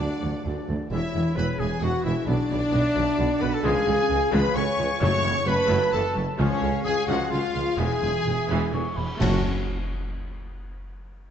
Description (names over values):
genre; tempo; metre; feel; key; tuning
cinematic, heroic adventure film score; 131 BPM; 3/4; straight; F# minor; A4 = 441 Hz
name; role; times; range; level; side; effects
warm symphonic violin section; melody; 0.0-9.5 s; C#5 to C#6; -34 LUFS; left 5 dB; none
clear clarinet; second line; 0.0-9.4 s; C#4 to C#5; -35 LUFS; left 1 dB; none
mellow hollow silver concert flute; second line; 0.0-9.5 s; B4 to C#6; -37 LUFS; left 3 dB; none
warm symphonic violin section; second line; 0.0-9.5 s; C#5 to C#6; -37 LUFS; left 3 dB; none
warm symphonic viola section; accompaniment; 0.0-9.5 s; D3 to C#4; -32 LUFS; equal; none
warm French horn section; sustained chords; 0.0-9.4 s; C#4 to C#5; -27 LUFS; left 1 dB; none
concert harp; arpeggios; 0.0-9.5 s; F#2 to B5; -36 LUFS; left 5 dB; none
mellow trumpet; stabs; 0.0-9.4 s; C#4 to C#5; -32 LUFS; right 1 dB; none
clear tuba; bass; 0.0-9.4 s; E1 to D2; -34 LUFS; right 3 dB; none
rich symphonic double bass section; bass; 0.0-9.5 s; E1 to D2; -30 LUFS; right 3 dB; none
warm symphonic cello section; bass; 0.0-9.5 s; C#2 to C#3; -32 LUFS; right 2 dB; none
timpani; percussion; 3.7-7.0, 9.2-9.4 s; F#2 to C#3; -31 LUFS; left 1 dB; none
cymbal swell, clash cymbals and concert bass drum; percussion; 6.4-10.1 s; none; -34 LUFS; equal; none
room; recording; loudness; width
wet scoring stage reverb, RT60 1.9 s; dark, warm production, nothing above 8.0 kHz; -22 LUFS; side -8 dB against mid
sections
0.0-9.2 A section; 9.2-10.6 B section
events
band accent 9.2-9.7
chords
0.0 D; 0.9 E; 2.3 Bm; 3.6 C#; 5.0 F#m; 6.4 C#; 7.8 E; 9.2 F#m